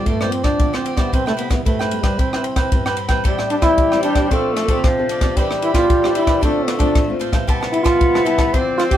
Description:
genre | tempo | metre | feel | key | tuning
samba and choro | 113 BPM | 4/4 | straight | C major, A minor from 3.2 s | A4 = 439 Hz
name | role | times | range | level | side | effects
warm trombone | melody | 0.0-9.0 s | G3 to G4 | -19 LUFS | right 1 dB | none
cavaquinho | accompaniment | 0.0-9.0 s | D4 to A5 | -26 LUFS | right 3 dB | none
nylon-string guitar | accompaniment | 0.0-9.0 s | G2 to A4 | -26 LUFS | left 3 dB | none
compact cocktail drum kit | drums | 0.1-9.0 s | kick drum, ride cymbal, rim click | -19 LUFS | equal | none
breathy tenor saxophone | second line | 3.3-9.0 s | F3 to C4 | -21 LUFS | left 1 dB | none
room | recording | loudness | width
moderate small room reverb, RT60 0.6 s | band playing live in one room | -15 LUFS | side -11 dB against mid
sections
0.0-3.2 A section; 3.2-9.0 B section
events
none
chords
0.0 G9sus4; 1.1 Cmaj7; 3.2 Am7; 4.3 F6; 5.4 Cmaj9/E; 6.4 Dm7; 7.5 Am9/C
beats
0.07 0.60 | 1.13 1.66 2.19 2.72 | 3.25 3.78 4.31 4.84 | 5.37 5.90 6.43 6.96 | 7.49 8.02 8.54

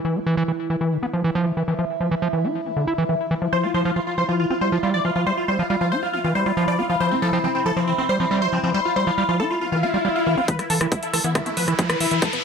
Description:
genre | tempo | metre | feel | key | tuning
psychedelic trance | 138 BPM | 4/4 | straight | E phrygian | A4 = 440 Hz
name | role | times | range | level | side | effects
overtone-sweeping drone | sustained chords | 0.0-12.4 s | E4 | -27 LUFS | left 1 dB | chorus, built-in reverb, phaser, sidechain pumping
overdriven acid bass | riff | 0.0-12.3 s | D3 to F4 | -22 LUFS | equal | auto-pan, sidechain pumping, ping-pong delay
dense compressed supersaw | melody | 3.5-12.4 s | B3 to D5 | -23 LUFS | equal | phaser, sidechain pumping, ping-pong delay
swell and riser | sound effects | 9.7-12.4 s | none | -26 LUFS | left 3 dB | none
drum and bass drum kit | drums | 10.5-12.4 s | hi-hat, rim click | -25 LUFS | left 1 dB | none
electronic kick drum | drums | 10.5-12.3 s | none | -22 LUFS | equal | overdrive, high-pass filter on kick
resonant blip pluck | second line | 11.2-11.8 s | A3 to B3 | -35 LUFS | left 1 dB | phaser, vintage 12-bit sampler grit, sidechain pumping, high-pass filter, ping-pong delay
room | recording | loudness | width
moderate plate reverb, RT60 1.3 s | none | -19 LUFS | side -6 dB against mid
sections
0.0-10.5 A section; 10.5-12.4 B section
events
swell 9.7-10.5; build-up 10.5-12.4; riser 10.5-12.4; filter sweep on acid bass 10.5-12.4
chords
0.0 E5; 3.5 F5; 10.5 E5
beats
| 0.05 0.48 0.92 1.35 | 1.79 2.22 2.66 3.09 | 3.53 3.96 4.40 4.83 | 5.26 5.70 6.13 6.57 | 7.00 7.44 7.87 8.31 | 8.74 9.18 9.61 10.05 | 10.48 10.92 11.35 11.79 | 12.22

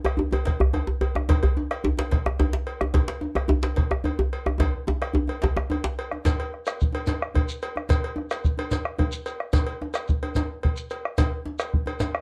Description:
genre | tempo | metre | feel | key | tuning
west african traditional, West African drum ensemble | 146 BPM (dotted quarters) | 12/8 | straight | none | none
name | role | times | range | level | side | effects
djembe | percussion | 0.0-12.1 s | none | -32 LUFS | equal | none
djembe | percussion | 0.0-6.0 s | none | -27 LUFS | equal | none
bombo | percussion | 0.1-12.2 s | none | -27 LUFS | equal | none
cowbell | percussion | 0.1-12.1 s | none | -35 LUFS | equal | none
shekere | percussion | 6.3-12.1 s | none | -34 LUFS | equal | none
room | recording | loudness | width
moderate studio reverb, RT60 0.5 s | dark, warm production | -25 LUFS | mono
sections
0.0-6.3 A section; 6.3-12.2 B section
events
drum fill 4.6-6.3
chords
none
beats
0.05 0.47 0.88 | 1.29 1.71 2.12 2.54 | 2.95 3.36 3.78 4.19 | 4.60 5.02 5.43 5.84 | 6.25 6.67 7.08 7.49 | 7.90 8.31 8.72 9.13 | 9.54 9.95 10.36 10.77 | 11.18 11.59 12.00

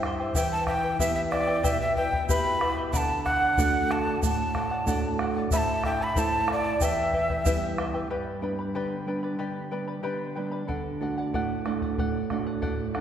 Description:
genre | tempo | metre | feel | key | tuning
andean folk, Andean ensemble | 93 BPM | 2/4 | straight | unclear | A4 = 440 Hz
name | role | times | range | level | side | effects
charango | accompaniment | 0.0-13.0 s | E4 to B5 | -32 LUFS | left 2 dB | none
nylon-string guitar | accompaniment | 0.0-13.0 s | E2 to G4 | -30 LUFS | right 3 dB | none
bombo | percussion | 0.0-7.9, 10.7-13.0 s | none | -30 LUFS | left 1 dB | none
breathy mellow quena | melody | 0.4-7.8 s | D5 to B5 | -27 LUFS | equal | none
egg shaker | percussion | 0.4-7.6 s | none | -39 LUFS | right 6 dB | none
room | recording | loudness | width
wet concert hall reverb, RT60 2.2 s | recorded in a church or concert hall | -24 LUFS | side -9 dB against mid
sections
0.0-8.1 A section; 8.1-13.0 B section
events
none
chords
0.4 Em; 2.9 D; 5.5 Am; 6.8 Em; 8.1 G; 10.7 D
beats
| 0.35 1.00 | 1.65 2.29 | 2.94 3.58 | 4.23 4.87 | 5.52 6.16 | 6.81 7.46 | 8.10 8.75 | 9.40 10.04 | 10.69 11.34 | 11.98 12.63

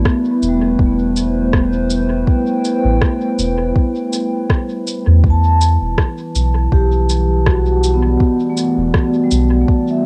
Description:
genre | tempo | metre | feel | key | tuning
ambient dub | 81 BPM | 4/4 | swing 54% on 16ths | E minor | A4 = 440 Hz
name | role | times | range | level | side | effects
warbly tape-like pad | sustained chords | 0.0-10.1 s | E3 to G5 | -24 LUFS | equal | chorus, built-in reverb
vibraphone with medium mallets | arpeggios | 0.0-10.1 s | G3 to A5 | -20 LUFS | equal | tape echo
soft dub sub bass | bass | 0.0-9.6 s | E1 to E2 | -18 LUFS | equal | none
electronic kick drum | drums | 0.1-9.8 s | none | -17 LUFS | equal | cassette tape
electronic rim click and shaker | drums | 0.1-9.5 s | none | -26 LUFS | equal | cassette tape, dub echo
room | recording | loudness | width
wet studio reverb, RT60 0.5 s | home recording on cassette | -15 LUFS | mono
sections
0.0-10.1 A section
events
none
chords
0.0 Am7; 5.2 Em9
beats
0.05 0.79 1.53 | 2.28 3.02 3.76 4.50 | 5.24 5.98 6.72 7.46 | 8.20 8.94 9.68

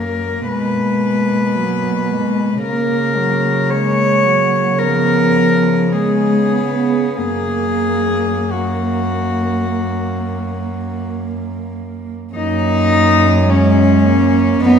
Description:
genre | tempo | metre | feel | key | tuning
classical, lyrical piece for cello ensemble | 45-57 BPM | 4/4 | rubato | F# major | A4 = 440 Hz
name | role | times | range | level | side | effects
clear cello | melody | 0.0-14.8 s | C#4 to C#5 | -18 LUFS | left 3 dB | none
warm cello | second line | 0.0-14.8 s | G#3 to B3 | -20 LUFS | right 5 dB | none
warm cello | accompaniment | 0.0-14.8 s | E#3 to B3 | -19 LUFS | left 2 dB | none
warm cello | bass | 0.0-14.8 s | F#2 to C#3 | -20 LUFS | right 1 dB | none
room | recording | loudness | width
wet recital hall reverb, RT60 1.4 s | heard from further back in the room | -13 LUFS | side -7 dB against mid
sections
0.0-12.3 A section; 12.3-14.8 A section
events
none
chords
0.5 G#m9/B; 2.6 F#add9/C#; 4.8 C#7; 7.2 F#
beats
0.49 1.55 | 2.63 3.71 4.79 5.93 | 7.18 8.52 9.83 11.11 | 12.35 13.47 14.61

